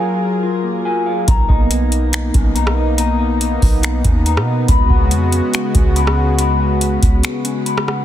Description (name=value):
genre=hip hop, atmospheric cloud-rap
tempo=141 BPM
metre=4/4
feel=half-time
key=B lydian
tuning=A4 = 440 Hz
part: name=warm analog pad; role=sustained chords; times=0.0-8.0 s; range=C#3 to A#4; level=-19 LUFS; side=left 1 dB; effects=chorus, sidechain pumping
part: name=mellow electric guitar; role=arpeggios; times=0.0-8.0 s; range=A#3 to B5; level=-22 LUFS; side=left 2 dB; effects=spring reverb, low-pass filter, ping-pong delay
part: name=soft 808-style bass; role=bass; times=1.3-7.2 s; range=B1 to B2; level=-16 LUFS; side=equal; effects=none
part: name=booming analog drum machine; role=drums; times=1.3-8.0 s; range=finger snaps, hi-hat, kick drum, rim click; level=-16 LUFS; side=equal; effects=soft clipping on snare
room=digital ambience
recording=dense, heavily limited modern master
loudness=-13 LUFS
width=side -11 dB against mid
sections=0.0-8.0 A section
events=break 7.2-8.0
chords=0.0 F#maj9; 1.3 Bmaj9; 4.7 C#7sus4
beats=0.00 0.43 0.85 | 1.28 1.71 2.13 2.56 | 2.98 3.41 3.83 4.26 | 4.68 5.11 5.53 5.96 | 6.38 6.81 7.24 7.66